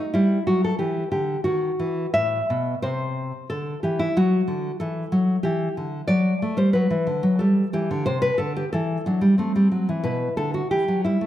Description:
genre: classical, baroque-style dance for nylon-string guitar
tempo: 91 BPM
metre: 3/4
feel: rubato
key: E minor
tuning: A4 = 440 Hz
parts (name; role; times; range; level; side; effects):
- nylon-string guitar; solo; 0.0-11.3 s; A2 to E5; -20 LUFS; equal; slapback echo
room: moderate recital hall reverb, RT60 1.6 s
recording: none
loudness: -20 LUFS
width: side -12 dB against mid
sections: 0.0-11.3 A section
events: none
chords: 0.1 Em; 1.5 D#m; 2.2 Am; 3.5 Dsus24; 4.2 Dadd9; 5.4 Em; 6.1 D/F#; 7.4 G5; 8.1 C; 9.4 F#dim; 10.0 Em/B

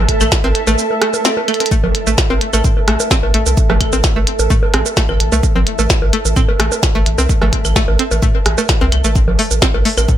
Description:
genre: minimal techno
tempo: 129 BPM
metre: 4/4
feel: straight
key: A minor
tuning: A4 = 440 Hz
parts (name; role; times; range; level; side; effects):
- rubbery square bass; bass; 0.0-10.2 s; A1 to A2; -17 LUFS; equal; sidechain pumping
- granular cloud pad; texture; 0.0-10.2 s; A4 to A5; -22 LUFS; right 2 dB; built-in reverb, sidechain pumping
- electronic kick drum; drums; 0.1-10.2 s; none; -15 LUFS; equal; none
- minimal click drum kit; drums; 0.1-10.2 s; hi-hat, shaker, snare drum; -18 LUFS; right 1 dB; none
- string-like resonator pluck; riff; 0.2-9.9 s; A3 to C4; -21 LUFS; equal; chorus, sidechain pumping, ping-pong delay
- electronic bongos, claves, rim click and congas; percussion; 0.2-10.1 s; none; -21 LUFS; right 2 dB; dub echo
room: light reverb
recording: none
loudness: -12 LUFS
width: side -11 dB against mid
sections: 0.0-10.2 A section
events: drum fill 1.5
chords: 0.0 A5

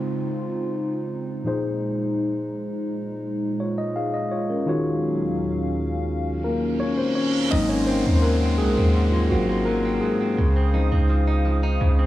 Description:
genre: R&B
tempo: 84 BPM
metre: 4/4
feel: straight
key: unclear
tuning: A4 = 440 Hz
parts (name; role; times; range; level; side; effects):
- mellow tine electric piano; accompaniment; 0.0-12.1 s; Bb2 to F5; -24 LUFS; left 2 dB; low-pass filter
- hollow soft pad; sustained chords; 0.0-12.1 s; Eb2 to Eb6; -29 LUFS; equal; chorus, low-pass filter
- downlifter and reverse cymbal; sound effects; 0.0-12.1 s; none; -35 LUFS; right 3 dB; none
- direct-recorded clean electric guitar; arpeggios; 7.5-12.1 s; Ab2 to Eb4; -28 LUFS; right 4 dB; analog delay
- warm 808-style bass; bass; 7.5-12.1 s; Ab1 to Eb2; -21 LUFS; equal; none
room: digital ambience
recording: dry, gritty hardware recording, small room ambience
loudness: -20 LUFS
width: side -14 dB against mid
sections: 0.0-7.5 A section; 7.5-12.1 B section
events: filter sweep 0.0-7.5; reverse cymbal 6.7-7.5; tine electric piano solo 7.5-12.1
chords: 0.0 Dbmaj9; 1.5 Bb7sus4; 4.7 Ebm11; 7.5 Ab9; 10.4 Bb7sus4 (rootless)

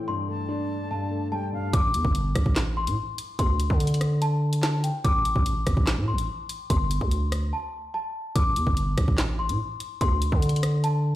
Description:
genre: hip hop, drill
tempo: 145 BPM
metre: 4/4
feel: half-time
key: A minor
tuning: A4 = 440 Hz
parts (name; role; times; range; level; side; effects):
- celesta; melody; 0.0-11.2 s; G5 to D6; -30 LUFS; left 3 dB; tape echo
- dark concert grand piano; accompaniment; 0.0-1.8 s; G2 to D4; -30 LUFS; left 1 dB; none
- warbly tape-like pad; sustained chords; 0.0-1.7 s; G3 to A4; -39 LUFS; right 1 dB; chorus, built-in reverb
- silver concert flute; second line; 0.3-1.7 s; F5 to A5; -44 LUFS; right 1 dB; tape echo
- growling 808-style bass; bass; 1.7-11.2 s; G1 to D3; -25 LUFS; equal; none
- drill drum kit; drums; 1.7-10.9 s; handclaps, hi-hat, kick drum, rim click, snare drum; -25 LUFS; equal; none
room: studio ambience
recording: played on a big sound system in a bare room, large studio reverb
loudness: -23 LUFS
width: side -14 dB against mid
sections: 0.0-1.7 A section; 1.7-11.2 B section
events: break 7.5-8.4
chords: 0.1 Gsus2; 1.7 Am; 3.4 D5; 5.0 Am; 6.7 Gsus2; 8.4 Am; 10.0 D5

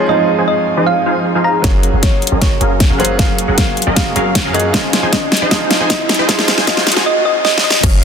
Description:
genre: future bass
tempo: 155 BPM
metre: 4/4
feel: half-time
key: unclear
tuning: A4 = 440 Hz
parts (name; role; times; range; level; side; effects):
- clear grand piano; accompaniment; 0.0-7.9 s; F3 to Ab4; -21 LUFS; right 2 dB; sidechain pumping, tape echo
- supersaw stab; riff; 0.0-8.0 s; F3 to Ab5; -18 LUFS; equal; sidechain pumping, low-pass filter
- thumb-piano-like synth pluck; melody; 0.1-8.0 s; C5 to Bb5; -18 LUFS; equal; chorus, sidechain pumping, tape echo
- warm 808-style bass; bass; 1.6-8.0 s; F1 to Gb2; -20 LUFS; equal; sidechain pumping
- dubstep drum kit; drums; 1.6-7.9 s; crash cymbal, hi-hat, snare drum; -15 LUFS; equal; none
- electronic kick drum; drums; 1.6-7.9 s; none; -15 LUFS; equal; none
- riser; sound effects; 3.1-7.1 s; none; -23 LUFS; left 1 dB; none
room: light reverb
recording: dense, heavily limited modern master, high-pass filter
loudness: -11 LUFS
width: side -7 dB against mid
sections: 0.0-1.6 A section; 1.6-7.8 B section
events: build-up 1.6-7.8; drum fill 1.6-7.1, 7.4-7.8; filter sweep on supersaw synth 1.6-7.8; filter sweep 1.6-7.8; riser 3.1-7.1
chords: 0.0 Fm7; 1.6 Gbmaj9; 4.7 Fm7

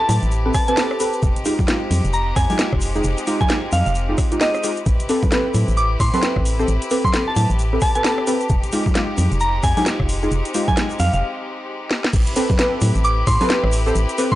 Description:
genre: UK garage, two-step garage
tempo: 132 BPM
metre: 4/4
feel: swing 60% on 16ths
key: A minor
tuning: A4 = 440 Hz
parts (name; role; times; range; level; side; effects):
- soft synth bell; melody; 0.0-14.4 s; Eb5 to D6; -22 LUFS; equal; chorus
- rich chamber violin section; sustained chords; 0.0-14.4 s; Ab3 to B4; -29 LUFS; left 2 dB; sidechain pumping
- organ-like FM bass; bass; 0.1-14.1 s; F1 to A2; -19 LUFS; equal; sidechain pumping
- garage drum kit; drums; 0.1-14.4 s; congas, crash cymbal, hi-hat, rim click, snare drum; -24 LUFS; equal; none
- egg shaker; percussion; 0.1-14.4 s; none; -34 LUFS; left 2 dB; none
- deep mellow chord stab; stabs; 0.5-14.3 s; Ab3 to C5; -22 LUFS; equal; ensemble chorus
- electronic kick drum; drums; 0.5-14.4 s; none; -20 LUFS; equal; overdrive
room: digital ambience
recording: dry, gritty hardware recording, transformer saturation, nothing above 10.4 kHz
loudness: -16 LUFS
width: side -15 dB against mid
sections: 0.0-12.1 A section; 12.1-14.4 B section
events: break 11.2-12.1; drum fill 11.9; drop 12.1-14.4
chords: 0.0 Am9; 1.2 Fm9; 4.9 Am9; 8.5 Fm9; 12.1 Am9

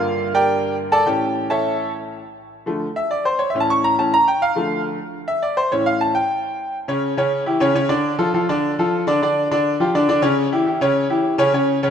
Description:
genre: latin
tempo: 206 BPM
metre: 4/4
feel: straight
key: unclear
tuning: A4 = 439 Hz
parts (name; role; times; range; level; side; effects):
- bright grand piano; solo; 0.0-11.9 s; G2 to C#6; -17 LUFS; equal; none
room: moderate lush hall reverb, RT60 2.4 s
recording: rough home demo mix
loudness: -17 LUFS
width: side -8 dB against mid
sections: 0.0-6.9 A section; 6.9-11.9 B section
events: grand piano solo 0.0-6.9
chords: 0.0 Gmadd9; 1.1 A; 2.2 Dm; 3.4 A; 4.6 Dm; 5.7 A; 6.9 C#m; 8.0 Dm; 9.2 N.C.; 10.4 C#dim

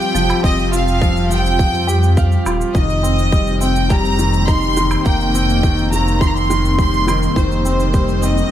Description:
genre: piano and strings electronica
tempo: 104 BPM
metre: 4/4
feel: straight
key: unclear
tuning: A4 = 440 Hz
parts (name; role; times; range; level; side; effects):
- clear studio violin section; melody; 0.0-8.5 s; C5 to C6; -20 LUFS; right 1 dB; tape echo
- granular cloud pad; sustained chords; 0.0-8.5 s; G3 to F4; -24 LUFS; left 1 dB; built-in reverb, sidechain pumping
- felt-muted upright piano; riff; 0.0-8.5 s; Eb3 to F5; -20 LUFS; equal; tape echo
- shaker and woodblock; drums; 0.0-8.5 s; none; -29 LUFS; right 2 dB; overdrive
- dark detuned saw bass; bass; 0.1-8.4 s; Eb1 to F2; -18 LUFS; equal; sidechain pumping
- electronic kick drum; drums; 0.4-8.1 s; none; -17 LUFS; equal; overdrive
room: little or no reverb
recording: none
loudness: -13 LUFS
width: side -11 dB against mid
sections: 0.0-8.5 A section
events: none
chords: 0.0 Fsus2; 2.7 Cm7/F

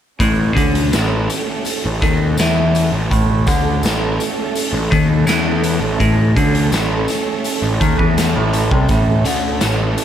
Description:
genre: psychedelic rock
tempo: 83 BPM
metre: 4/4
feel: straight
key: A major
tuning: A4 = 435 Hz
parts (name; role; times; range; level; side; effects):
- dark studio string section; sustained chords; 0.2-10.0 s; A3 to A4; -23 LUFS; right 6 dB; none
- clean electric guitar; riff; 0.2-9.9 s; A2 to E3; -17 LUFS; left 2 dB; phaser
- fuzz picked electric bass; bass; 0.2-10.0 s; A1 to E2; -19 LUFS; equal; overdrive
- raw garage drum kit; drums; 0.2-10.0 s; hi-hat, kick drum, snare drum; -20 LUFS; equal; none
- tambourine; percussion; 0.2-10.0 s; none; -32 LUFS; left 5 dB; none
room: light reverb, small room reverb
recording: none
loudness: -14 LUFS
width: side -10 dB against mid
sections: 0.2-10.0 A section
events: none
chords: 0.2 A

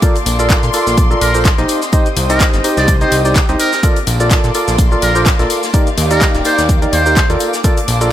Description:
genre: piano house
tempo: 126 BPM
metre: 4/4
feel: swing 55% on 16ths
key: Bb major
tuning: A4 = 440 Hz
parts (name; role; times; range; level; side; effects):
- analog string pad; sustained chords; 0.0-8.1 s; G4 to Eb6; -23 LUFS; right 2 dB; ensemble chorus, sidechain pumping
- percussive organ stab; riff; 0.0-8.1 s; Eb4 to Eb5; -17 LUFS; equal; chorus, sidechain pumping, ping-pong delay
- big rock drum kit; drums; 0.0-8.0 s; hi-hat, shaker, snare drum; -27 LUFS; equal; none
- electronic kick drum; drums; 0.0-7.7 s; none; -13 LUFS; equal; overdrive
- house drum kit; drums; 0.0-8.1 s; handclaps, hi-hat, shaker; -20 LUFS; left 2 dB; overdrive
- tambourine; percussion; 0.0-8.1 s; none; -31 LUFS; right 1 dB; none
- warm symphonic string section; texture; 0.0-8.1 s; Bb3 to C6; -23 LUFS; left 3 dB; sidechain pumping
- fat analog bass; bass; 0.3-8.1 s; Eb1 to Bb2; -16 LUFS; equal; sidechain pumping
- trumpet with metal mute; melody; 1.2-7.3 s; Bb4 to D5; -19 LUFS; right 1 dB; ping-pong delay
room: moderate plate reverb, RT60 1.1 s, studio ambience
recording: dreamy mix soaked in reverb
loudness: -10 LUFS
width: side -12 dB against mid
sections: 0.0-8.1 A section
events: none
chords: 0.0 Bbmaj7; 1.7 Cm; 3.8 Bbmaj7; 5.7 Ebmaj7; 7.4 Bbmaj7

